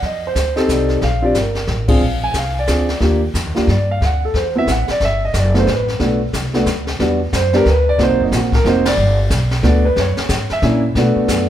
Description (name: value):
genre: jazz piano trio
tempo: 181 BPM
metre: 3/4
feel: swing 62% on 8ths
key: unclear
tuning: A4 = 438 Hz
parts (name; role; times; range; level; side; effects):
- clear concert grand piano; melody; 0.0-11.5 s; G3 to Ab5; -16 LUFS; right 1 dB; none
- upright bass; bass; 0.0-11.5 s; F1 to B2; -18 LUFS; equal; none
- jazz brush drum kit; drums; 0.0-11.5 s; brushed snare drum, hi-hat, kick drum, ride cymbal, snare drum; -22 LUFS; left 2 dB; none
room: light reverb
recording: none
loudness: -14 LUFS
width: side -11 dB against mid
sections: 0.0-7.0 A section; 7.0-11.5 B section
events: band accent 1.9, 8.8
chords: 0.0 F9; 1.0 Bb69; 2.0 Bb7; 3.0 Ebmaj9; 4.0 D9; 5.0 Gmaj9; 7.0 Em9; 8.0 Ab9; 9.0 G; 10.0 F#7; 11.0 Bm7